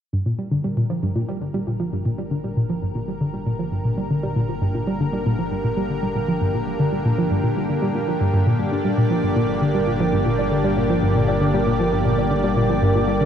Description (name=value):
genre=ambient, sequencer-driven space music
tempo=117 BPM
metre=4/4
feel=straight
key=G minor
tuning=A4 = 439 Hz
part: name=lush unison pad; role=sustained chords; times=0.1-13.3 s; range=D3 to D5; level=-23 LUFS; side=equal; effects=chorus
part: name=analog pluck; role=riff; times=0.1-13.3 s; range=G2 to G3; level=-21 LUFS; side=equal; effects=chorus, analog delay
part: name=analog drone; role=bass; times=1.6-13.3 s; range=G1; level=-32 LUFS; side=equal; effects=chorus
room=wet plate reverb, RT60 2.5 s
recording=dark, warm production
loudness=-19 LUFS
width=side -8 dB against mid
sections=0.1-13.3 A section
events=fade-in on analog synth pad 0.1-13.3; fade-in on synth drone 0.1-13.3; filter sweep on synth arpeggio sound 0.1-13.3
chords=0.1 Gm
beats=| 0.13 0.65 1.16 1.67 | 2.18 2.70 3.21 3.72 | 4.24 4.75 5.26 5.77 | 6.29 6.80 7.31 7.82 | 8.34 8.85 9.36 9.88 | 10.39 10.90 11.41 11.93 | 12.44 12.95